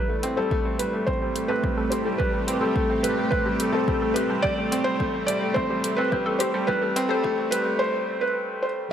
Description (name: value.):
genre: piano and strings electronica.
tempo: 107 BPM.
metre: 4/4.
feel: straight.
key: A minor.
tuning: A4 = 438 Hz.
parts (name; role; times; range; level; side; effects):
felt-muted upright piano; melody; 0.0-8.9 s; A4 to D5; -26 LUFS; right 1 dB; none.
lush unison pad; sustained chords; 0.1-7.8 s; A3 to D5; -31 LUFS; right 1 dB; chorus, phaser, sidechain pumping.
analog pluck; arpeggios; 0.0-7.2 s; G4 to E5; -34 LUFS; left 4 dB; none.
clear upright piano; riff; 0.0-8.9 s; G3 to C4; -27 LUFS; equal; tape echo.
electronic hi-hat; drums; 0.2-7.6 s; none; -31 LUFS; left 1 dB; small room ambience.
electronic kick drum; drums; 0.5-7.4 s; none; -29 LUFS; equal; small room ambience.
room: moderate lush hall reverb, RT60 1.9 s.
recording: high-pass filter.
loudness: -22 LUFS.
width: side -9 dB against mid.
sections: 0.0-8.9 A section.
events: build-up 0.0-8.9; break 7.8-8.9.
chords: 0.0 Am7.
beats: 0.52 1.08 1.64 | 2.20 2.76 3.32 3.88 | 4.44 5.00 5.56 6.12 | 6.68 7.24 7.80 8.37 | 8.93.